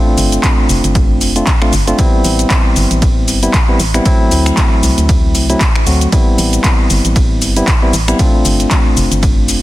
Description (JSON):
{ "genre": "deep house", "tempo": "116 BPM", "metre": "4/4", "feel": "swing 57% on 16ths", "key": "A minor", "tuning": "A4 = 437 Hz", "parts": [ { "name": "tine electric piano", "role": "stabs", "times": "0.0-9.6 s", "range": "F#3 to F#4", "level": "-15 LUFS", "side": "equal", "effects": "sidechain pumping, digital delay" }, { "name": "organ-like FM bass", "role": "bass", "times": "0.2-9.6 s", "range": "F1 to D2", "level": "-15 LUFS", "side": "equal", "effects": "sidechain pumping" }, { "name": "punchy analog drum machine", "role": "drums", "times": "0.2-9.6 s", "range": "cabasa, finger snaps, handclaps, hi-hat, ride cymbal", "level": "-17 LUFS", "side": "equal", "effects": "none" }, { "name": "electronic kick drum", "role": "drums", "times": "0.4-9.3 s", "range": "none", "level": "-13 LUFS", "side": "equal", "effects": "none" } ], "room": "digital ambience", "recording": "dense, heavily limited modern master", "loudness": "-9 LUFS", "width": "side -16 dB against mid", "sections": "0.0-9.6 A section", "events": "none", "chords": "0.0 G9sus4; 2.0 Am7; 4.1 D7; 6.1 Am7; 8.2 G9sus4", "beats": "0.43 0.95 1.47 | 1.99 2.50 3.02 3.54 | 4.05 4.57 5.09 5.61 | 6.12 6.64 7.16 7.68 | 8.19 8.71 9.23" }